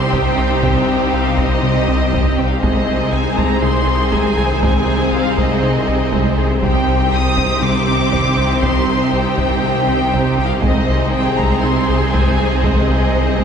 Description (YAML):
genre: cinematic, hybrid orchestral and electronic film score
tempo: 120 BPM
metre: 4/4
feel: straight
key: C minor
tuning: A4 = 440 Hz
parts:
  - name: rich symphonic violin section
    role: melody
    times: 0.0-13.4 s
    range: Eb5 to Eb6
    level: -22 LUFS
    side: left 1 dB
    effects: none
  - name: rich symphonic violin section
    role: second line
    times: 0.0-13.4 s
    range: G4 to C5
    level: -22 LUFS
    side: left 3 dB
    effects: none
  - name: rich symphonic viola section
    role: accompaniment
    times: 0.0-13.4 s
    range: C4 to Eb4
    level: -22 LUFS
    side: right 1 dB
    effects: none
  - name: evolving wavetable pad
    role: sustained chords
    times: 0.0-13.4 s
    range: Eb3 to C5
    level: -24 LUFS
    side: left 2 dB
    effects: chorus, built-in reverb
  - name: mallet-like synth pluck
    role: arpeggios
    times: 0.0-13.4 s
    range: C3 to Ab4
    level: -25 LUFS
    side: right 5 dB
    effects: none
  - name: round analog bass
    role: riff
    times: 0.0-13.4 s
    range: C2 to C3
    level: -22 LUFS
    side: left 1 dB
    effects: none
  - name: detuned saw bass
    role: bass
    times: 0.0-13.4 s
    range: C2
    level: -24 LUFS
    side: equal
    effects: none
  - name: rich chamber double bass section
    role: bass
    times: 0.0-13.4 s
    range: C2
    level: -24 LUFS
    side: right 2 dB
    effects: none
  - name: rich symphonic cello section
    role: bass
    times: 0.0-13.4 s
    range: C3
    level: -23 LUFS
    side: right 3 dB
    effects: none
  - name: taiko ensemble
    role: drums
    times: 0.1-13.4 s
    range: none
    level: -25 LUFS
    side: equal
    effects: none
room: wet recital hall reverb, RT60 1.6 s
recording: heard from further back in the room, nothing above 10.3 kHz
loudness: -13 LUFS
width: side -7 dB against mid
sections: 0.0-13.4 A section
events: none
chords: 0.0 Cm; 2.6 Ab/C; 6.6 Cm; 10.6 Ab/C